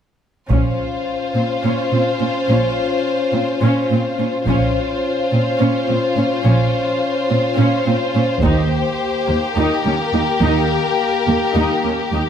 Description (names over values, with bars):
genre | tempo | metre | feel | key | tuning
cinematic, epic orchestral film score | 212 BPM (eighths) | 7/8 | straight | Bb dorian | A4 = 440 Hz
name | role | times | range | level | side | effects
warm symphonic violin section | melody | 0.5-12.3 s | Bb4 to C5 | -23 LUFS | left 2 dB | none
warm symphonic violin section | second line | 0.5-12.3 s | F4 to G4 | -23 LUFS | left 3 dB | none
dark symphonic viola section | accompaniment | 0.5-12.2 s | Bb3 to Eb4 | -24 LUFS | right 2 dB | none
dark French horn section | sustained chords | 0.5-12.3 s | Bb3 to C5 | -22 LUFS | left 4 dB | none
dark symphonic cello section | bass | 0.5-12.2 s | Eb2 to Bb2 | -20 LUFS | right 2 dB | none
warm symphonic double bass section | bass | 0.5-10.7 s | Bb1 to Eb2 | -21 LUFS | right 3 dB | none
taiko ensemble | drums | 0.5-9.5 s | none | -23 LUFS | equal | none
room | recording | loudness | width
moderate scoring stage reverb, RT60 1.7 s | close, detailed microphones | -15 LUFS | side -8 dB against mid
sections
0.5-12.3 A section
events
build-up 0.5-12.3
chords
0.5 Bbmadd9; 8.4 Eb